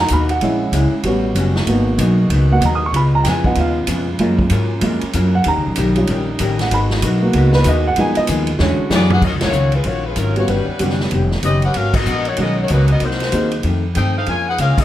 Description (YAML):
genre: jazz, big band swing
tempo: 191 BPM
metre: 4/4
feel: swing 62% on 8ths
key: Eb minor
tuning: A4 = 438 Hz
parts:
  - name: warm baby grand piano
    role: accompaniment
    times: 0.0-13.6 s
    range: D3 to Eb6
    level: -19 LUFS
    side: right 2 dB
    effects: none
  - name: warm saxophone section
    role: sustained chords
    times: 0.0-9.2 s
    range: B2 to F#4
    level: -26 LUFS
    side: equal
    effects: none
  - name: upright bass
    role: bass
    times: 0.0-14.8 s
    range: F1 to Ab2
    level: -17 LUFS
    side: equal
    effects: none
  - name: vintage hollow-body jazz guitar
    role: accompaniment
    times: 0.1-14.8 s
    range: F2 to C#5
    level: -24 LUFS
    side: left 5 dB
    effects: none
  - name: swinging big-band drum kit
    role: drums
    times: 0.1-14.8 s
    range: crash cymbal, hi-hat, kick drum, ride cymbal, snare drum, toms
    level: -24 LUFS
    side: equal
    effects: none
  - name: warm saxophone section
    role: melody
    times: 8.9-14.8 s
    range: Gb3 to Ab5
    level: -20 LUFS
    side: left 3 dB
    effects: plate reverb
room: light reverb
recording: none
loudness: -14 LUFS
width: side -13 dB against mid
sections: 0.0-9.2 A section; 9.2-14.8 B section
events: grand piano solo 0.0-9.2; drum fill 8.6-9.2; band accent 9.4, 11.9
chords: 0.4 Bbm7b5; 1.0 A13; 1.7 Abm7; 2.9 Db7; 4.2 Gbmaj7; 5.5 Eb7; 6.7 Abm7; 8.0 Fm7b5; 8.6 E13; 9.2 Ebm9; 10.5 Eb7alt; 11.7 Abm9; 13.0 Cm7b5; 13.6 F7; 14.3 Bbm7